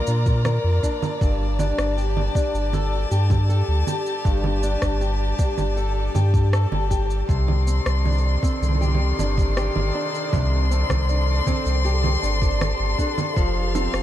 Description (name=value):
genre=folktronica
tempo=79 BPM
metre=4/4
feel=straight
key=unclear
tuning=A4 = 441 Hz
part: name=rich string quartet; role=sustained chords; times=0.0-14.0 s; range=Eb3 to C6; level=-28 LUFS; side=left 3 dB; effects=none
part: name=fingerpicked steel-string acoustic guitar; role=arpeggios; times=0.0-14.0 s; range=G2 to Bb4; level=-27 LUFS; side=left 1 dB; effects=ping-pong delay
part: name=warm sub bass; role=bass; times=0.1-14.0 s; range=F1 to Bb2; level=-21 LUFS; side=equal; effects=none
part: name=electronic shaker, rim click and congas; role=drums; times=0.1-14.0 s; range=none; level=-30 LUFS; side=right 4 dB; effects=none
part: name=electronic kick drum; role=drums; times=0.3-13.5 s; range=none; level=-22 LUFS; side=equal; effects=none
part: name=flickering grainy texture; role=texture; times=8.1-14.0 s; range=A4 to A5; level=-34 LUFS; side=equal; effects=built-in reverb
room=light reverb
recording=none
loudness=-19 LUFS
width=side -12 dB against mid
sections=0.0-14.0 A section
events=none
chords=0.0 Bb; 1.2 Gsus2; 7.3 Cmadd9; 13.4 Fsus2